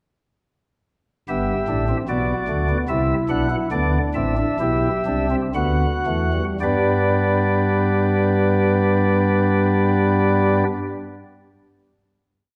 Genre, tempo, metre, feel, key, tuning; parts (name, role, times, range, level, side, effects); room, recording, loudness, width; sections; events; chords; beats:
classical, baroque-style 4-part fugue for pipe organ; 55-76 BPM; 3/4; straight; G major; A4 = 440 Hz
pipe organ, flutes; solo; 1.3-10.6 s; G1 to F#5; -20 LUFS; equal
wet scoring stage reverb, RT60 1.6 s; -20 LUFS; mono
1.3-6.6 exposition; 6.6-9.9 final chord
slowing down 1.3-8.2
1.3 G; 2.9 C; 3.7 G; 5.5 D; 6.6 G
| 1.28 2.08 2.88 | 3.71 4.59 5.54 | 6.59 7.68 8.77